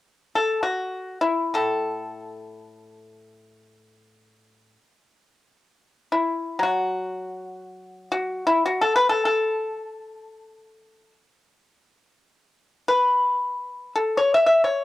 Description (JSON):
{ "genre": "chinese traditional, Chinese solo plucked strings", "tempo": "free time", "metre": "none", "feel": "none", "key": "A gong mode", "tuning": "A4 = 440 Hz", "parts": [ { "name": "pipa", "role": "solo", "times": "0.4-14.8 s", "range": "A2 to E5", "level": "-21 LUFS", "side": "left 2 dB", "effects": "cassette tape" } ], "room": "light reverb, small room reverb", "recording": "home recording on cassette", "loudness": "-20 LUFS", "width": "side -16 dB against mid", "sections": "0.0-14.8 A section", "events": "none", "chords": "none", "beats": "free time" }